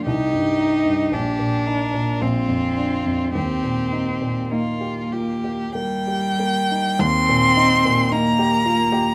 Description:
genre	classical, slow romantic movement for piano trio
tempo	46-57 BPM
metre	3/4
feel	rubato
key	Eb major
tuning	A4 = 439 Hz
part	rich violin	melody	0.0-9.1 s	F4 to C6	-25 LUFS	equal	none
part	warm cello	second line	0.0-9.1 s	G3 to Eb4	-24 LUFS	equal	none
part	warm grand piano	accompaniment	0.0-9.1 s	Bb1 to G4	-26 LUFS	equal	none
room	moderate studio reverb, RT60 0.5 s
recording	none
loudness	-20 LUFS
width	mono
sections	0.0-7.0 A section; 7.0-9.1 B section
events	none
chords	0.1 Cm; 1.1 Eb/Bb; 2.2 Bb; 3.4 Eb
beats	| 0.07 1.13 2.22 | 3.36 4.53 5.76 | 7.01 8.12

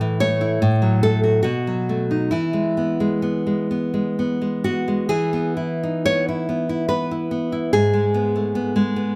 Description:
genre	romantic piece for solo classical guitar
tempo	60-74 BPM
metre	3/4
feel	rubato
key	E major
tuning	A4 = 441 Hz
part	nylon-string guitar	solo	0.0-9.2 s	G#2 to C#5	-21 LUFS	equal	none
room	light reverb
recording	close, detailed microphones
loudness	-21 LUFS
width	mono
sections	0.0-5.1 A section; 5.1-9.2 B section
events	none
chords	0.0 A; 0.6 F#m/A; 1.4 B7; 2.3 E; 7.7 E/G# (rootless)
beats	0.61 1.45 | 2.32 3.23 4.16 | 5.08 6.04 6.88 | 7.73 8.56

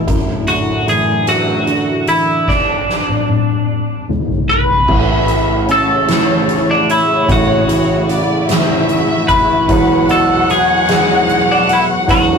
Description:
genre	six-eight pop ballad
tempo	50 BPM (dotted quarters)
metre	6/8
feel	straight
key	A major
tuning	A4 = 438 Hz
part	twelve-string electric guitar	melody	0.0-12.4 s	D4 to B4	-15 LUFS	equal	none
part	felt-muted upright piano	accompaniment	0.0-12.4 s	E1 to C#4	-17 LUFS	right 3 dB	none
part	dark studio string section	sustained chords	0.0-12.4 s	A2 to F#4	-20 LUFS	left 2 dB	none
part	soft-mallet drum kit	drums	0.1-12.3 s	crash cymbal, hi-hat, kick drum, rim click, snare drum, toms	-18 LUFS	equal	none
part	warm studio violin section	second line	4.9-12.4 s	C#5 to F#5	-18 LUFS	left 2 dB	none
room	wet booth ambience, RT60 0.2 s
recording	rough rehearsal-room recording, warm saturation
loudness	-11 LUFS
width	side -6 dB against mid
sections	0.0-4.9 A section; 4.9-12.4 B section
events	drum fill 2.5-4.9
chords	0.1 Dadd9/F#; 2.5 N.C.; 4.9 A6; 9.7 Eadd9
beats	| 0.08 1.28 | 2.48 3.68 | 4.88 6.08 | 7.28 8.48 | 9.68 10.88 | 12.08

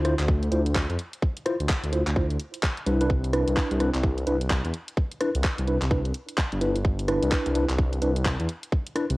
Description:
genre	UK garage, two-step garage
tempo	128 BPM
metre	4/4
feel	swing 61% on 16ths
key	unclear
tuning	A4 = 440 Hz
part	mellow tine electric piano	stabs	0.0-9.0 s	D4 to C5	-28 LUFS	equal	medium stereo tremolo, cassette tape, analog delay
part	dark detuned saw bass	bass	0.0-9.2 s	G1 to F2	-25 LUFS	equal	tube saturation
part	garage drum kit	drums	0.1-9.2 s	handclaps, hi-hat, rim click	-32 LUFS	equal	overdrive, studio reverb, cassette tape
part	electronic kick drum	drums	0.3-8.8 s	none	-24 LUFS	equal	studio reverb, cassette tape
room	light reverb, digital ambience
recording	home recording on cassette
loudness	-23 LUFS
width	side -21 dB against mid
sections	0.0-9.2 A section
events	none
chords	0.0 Dm9; 2.9 Cmaj9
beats	0.28 0.75 | 1.22 1.69 2.16 2.63 | 3.10 3.57 4.04 4.50 | 4.97 5.44 5.91 6.38 | 6.85 7.32 7.79 8.25 | 8.72

